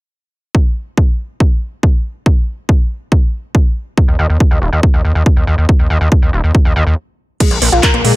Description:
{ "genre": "uplifting trance", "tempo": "140 BPM", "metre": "4/4", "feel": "straight", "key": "unclear", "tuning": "A4 = 440 Hz", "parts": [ { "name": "electronic kick drum", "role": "drums", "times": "0.5-7.9 s", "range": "none", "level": "-11 LUFS", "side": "equal", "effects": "none" }, { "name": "gritty driven synth bass", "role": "bass", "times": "4.1-8.1 s", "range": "Eb1 to Bb2", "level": "-12 LUFS", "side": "equal", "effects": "sidechain pumping" }, { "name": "analog pluck", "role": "arpeggios", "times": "7.4-8.1 s", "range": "Ab3 to Bb4", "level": "-15 LUFS", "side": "left 3 dB", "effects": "chorus, sidechain pumping, ping-pong delay" }, { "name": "house drum kit", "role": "drums", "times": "7.4-8.1 s", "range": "crash cymbal, handclaps, hi-hat", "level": "-14 LUFS", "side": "right 1 dB", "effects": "none" } ], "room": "little or no reverb", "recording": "none", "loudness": "-11 LUFS", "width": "side -19 dB against mid", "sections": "0.5-7.4 A section", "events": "stop 7.0-7.4", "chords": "0.5 N.C.; 7.4 Bb5" }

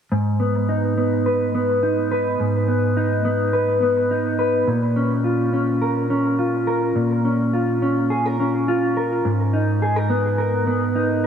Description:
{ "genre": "dream pop", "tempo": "105 BPM", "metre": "4/4", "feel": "straight", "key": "G# dorian", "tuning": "A4 = 442 Hz", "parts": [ { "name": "mellow electric guitar", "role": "solo", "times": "0.1-11.3 s", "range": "G#2 to B4", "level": "-18 LUFS", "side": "equal", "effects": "analog chorus, dub echo" } ], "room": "moderate plate reverb, RT60 2.9 s", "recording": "echo-heavy mix", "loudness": "-18 LUFS", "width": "side -8 dB against mid", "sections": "0.1-9.3 A section; 9.3-11.3 B section", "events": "none", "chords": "0.1 G#m; 4.7 A#m; 9.3 G#madd9" }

